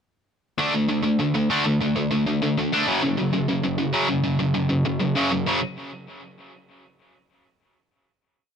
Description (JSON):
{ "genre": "punk", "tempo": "197 BPM", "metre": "4/4", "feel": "straight", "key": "F# minor", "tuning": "A4 = 440 Hz", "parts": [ { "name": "sludgy distorted guitar", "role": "solo", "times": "0.6-5.6 s", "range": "F#2 to D4", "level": "-20 LUFS", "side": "equal", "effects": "overdrive, tape echo" } ], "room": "light reverb", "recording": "none", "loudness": "-20 LUFS", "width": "side -7 dB against mid", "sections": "0.6-5.5 verse; 5.5-6.7 final chord", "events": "none", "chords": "0.6 D5; 2.9 F#5", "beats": "| 0.58 0.88 1.19 1.50 | 1.80 2.11 2.41 2.72 | 3.02 3.33 3.63 3.93 | 4.24 4.54 4.85 5.15 | 5.46" }